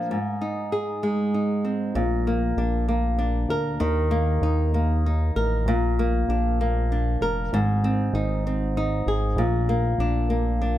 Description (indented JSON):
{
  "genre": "six-eight pop ballad",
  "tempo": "65 BPM (dotted quarters)",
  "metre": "6/8",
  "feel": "straight",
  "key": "Bb major",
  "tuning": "A4 = 440 Hz",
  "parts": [
    { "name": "flamenco guitar", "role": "accompaniment", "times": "0.0-10.8 s", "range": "Ab2 to Bb4", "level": "-24 LUFS", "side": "equal", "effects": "none" },
    { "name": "chorused synth bass", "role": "bass", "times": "2.0-10.8 s", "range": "F1 to Eb2", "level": "-24 LUFS", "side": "equal", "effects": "none" }
  ],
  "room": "studio reverb",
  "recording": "none",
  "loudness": "-21 LUFS",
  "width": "side -13 dB against mid",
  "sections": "0.0-2.0 A section; 2.0-10.8 B section",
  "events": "none",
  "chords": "0.1 Ab; 2.0 Bb; 3.8 Eb5; 5.7 Bb; 7.5 Ab; 9.4 Bb"
}